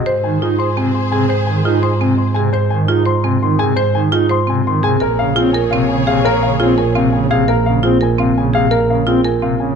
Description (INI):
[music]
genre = classical, minimalist pattern music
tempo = 340 BPM (eighths)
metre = 7/8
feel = straight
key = Ab major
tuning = A4 = 439 Hz
[part]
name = warm baby grand piano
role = melody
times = 0.0-9.8 s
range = Ab4 to C6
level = -20 LUFS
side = left 8 dB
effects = none
[part]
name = pipe organ, foundations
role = accompaniment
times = 0.0-9.7 s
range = C3 to Eb4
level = -19 LUFS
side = left 1 dB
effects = none
[part]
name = marimba with hard mallets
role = arpeggios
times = 0.0-9.7 s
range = C4 to C5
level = -18 LUFS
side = right 5 dB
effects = none
[part]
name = rich symphonic string section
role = sustained chords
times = 0.1-2.3, 5.0-7.3 s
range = Ab4 to Db5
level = -25 LUFS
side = left 3 dB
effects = none
[part]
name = rich double bass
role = bass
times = 0.1-9.8 s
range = Bb1 to Ab2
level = -18 LUFS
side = right 2 dB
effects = none
[sound]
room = moderate large studio reverb, RT60 1.2 s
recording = dark, warm production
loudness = -12 LUFS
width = side -6 dB against mid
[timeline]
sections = 0.1-9.8 A section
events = none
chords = 0.1 Ab; 5.0 Bbm7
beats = | 0.07 0.25 0.42 0.60 0.78 0.95 1.13 | 1.31 1.48 1.66 1.83 2.01 2.19 2.37 | 2.54 2.72 2.89 3.07 3.25 3.42 3.60 | 3.78 3.95 4.13 4.31 4.48 4.66 4.83 | 5.01 5.19 5.37 5.54 5.72 5.89 6.07 | 6.25 6.42 6.60 6.78 6.95 7.13 7.31 | 7.48 7.66 7.83 8.01 8.19 8.37 8.54 | 8.72 8.89 9.07 9.25 9.42 9.60